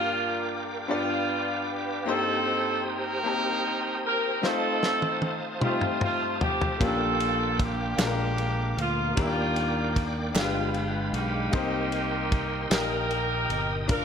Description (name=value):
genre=slow gospel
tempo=51 BPM (dotted quarters)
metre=6/8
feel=straight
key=Bb major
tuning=A4 = 440 Hz
part: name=clear horn section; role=melody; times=0.0-14.0 s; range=Ab3 to Bb4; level=-28 LUFS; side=right 1 dB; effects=none
part: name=bright concert grand piano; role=accompaniment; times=0.0-14.0 s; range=G2 to A5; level=-31 LUFS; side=left 4 dB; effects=none
part: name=bright tonewheel organ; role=sustained chords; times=0.0-14.0 s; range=Ab3 to Eb6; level=-33 LUFS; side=right 2 dB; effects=slow rotary speaker, chorus vibrato
part: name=warm soul drum kit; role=drums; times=4.4-14.0 s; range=kick drum, ride cymbal, snare drum, toms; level=-30 LUFS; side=equal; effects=none
part: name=fingered electric bass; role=bass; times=6.8-14.0 s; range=F1 to Eb2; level=-32 LUFS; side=right 1 dB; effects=none
part: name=group handclap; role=percussion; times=8.0-13.1 s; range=none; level=-39 LUFS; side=right 5 dB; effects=none
room=moderate recital hall reverb, RT60 1.7 s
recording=none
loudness=-24 LUFS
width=side -7 dB against mid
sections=0.0-14.0 A section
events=drum fill 4.4-6.8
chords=0.0 Gm7; 0.9 G7; 2.1 Cm7/G; 4.4 F7; 6.8 Bb6; 8.0 Bb7; 9.2 Ebmaj7; 10.3 G7b9; 11.5 Cm7; 12.7 Eb/Bb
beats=0.89 | 2.07 3.25 | 4.43 5.62 | 6.80 7.98 | 9.16 10.35 | 11.53 12.71 | 13.89